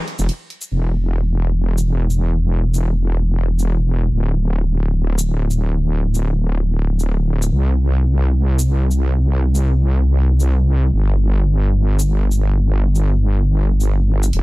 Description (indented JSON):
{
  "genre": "heavy wobble dubstep",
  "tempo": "141 BPM",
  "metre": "4/4",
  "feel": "half-time",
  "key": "E minor",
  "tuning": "A4 = 444 Hz",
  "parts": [
    { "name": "dubstep drum kit", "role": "drums", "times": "0.1-14.4 s", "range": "hi-hat, ride cymbal, shaker", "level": "-28 LUFS", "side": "left 1 dB", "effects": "overdrive" },
    { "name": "wobble bass", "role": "bass", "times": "0.2-14.4 s", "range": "D1 to C2", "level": "-15 LUFS", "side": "equal", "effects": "chorus, overdrive" }
  ],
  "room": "little or no reverb",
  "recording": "dark, warm production",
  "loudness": "-15 LUFS",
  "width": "side -20 dB against mid",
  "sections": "0.7-14.3 A section",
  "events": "break 0.3-0.7",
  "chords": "none"
}